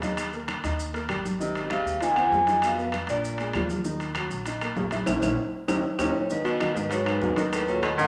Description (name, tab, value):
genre	Afro-Cuban jazz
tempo	196 BPM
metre	4/4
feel	straight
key	unclear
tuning	A4 = 435 Hz
part	warm baby grand piano	accompaniment	0.0-8.1 s	Eb3 to Fb5	-34 LUFS	equal	none
part	upright bass	bass	0.0-8.1 s	Ab1 to G#2	-38 LUFS	equal	none
part	congas	percussion	0.0-8.1 s	none	-38 LUFS	equal	none
part	maracas	percussion	0.0-8.1 s	none	-47 LUFS	equal	none
part	timbales	percussion	0.0-8.0 s	none	-34 LUFS	equal	none
part	claves	percussion	0.2-8.0 s	none	-41 LUFS	equal	none
part	vibraphone with medium mallets	melody	1.4-3.7, 6.0-8.1 s	A#4 to Ab5	-29 LUFS	equal	none
part	breathy baritone saxophone	second line	1.4-3.7, 6.0-8.1 s	F#2 to F3	-33 LUFS	equal	none
room	wet large studio reverb, RT60 1.2 s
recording	none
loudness	-27 LUFS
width	mono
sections	0.0-6.3 A section; 6.3-8.1 B section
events	band accent 5.1-6.3; drum fill 5.8-6.3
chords	0.2 Eb; 1.4 Ab6; 2.6 Bmaj7#11; 3.2 Bb7; 3.9 Ebm; 5.1 Bbdim; 5.7 Eb7; 6.3 G#m7; 7.5 D#dim